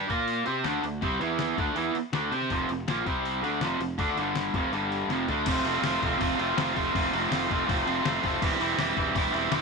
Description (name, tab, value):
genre	garage rock duo or trio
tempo	162 BPM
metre	4/4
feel	straight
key	unclear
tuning	A4 = 439 Hz
part	raw garage guitar	riff	0.0-9.6 s	F2 to C5	-26 LUFS	right 1 dB	overdrive
part	fuzz fingered electric bass	bass	0.0-9.6 s	E1 to C3	-37 LUFS	equal	overdrive
part	dusty soul sampler-style drum kit	drums	0.1-9.6 s	crash cymbal, hi-hat, kick drum, snare drum, toms	-33 LUFS	left 4 dB	none
room	little or no reverb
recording	1960s-style stereo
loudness	-25 LUFS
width	side -4 dB against mid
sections	0.0-5.5 A section; 5.5-9.6 B section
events	drum fill 5.1-5.5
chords	0.1 Bb5; 0.5 D5; 1.2 E5; 1.6 D5; 2.5 F5; 3.1 C5; 3.4 F5; 4.2 G5; 4.5 F5; 4.7 G5; 5.1 F5; 5.5 F; 8.4 C/E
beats	0.28 0.65 | 1.02 1.39 1.77 2.14 | 2.51 2.88 3.25 3.62 | 3.99 4.36 4.73 5.10 | 5.47 5.84 6.21 6.58 | 6.94 7.31 7.68 8.05 | 8.41 8.78 9.15 9.52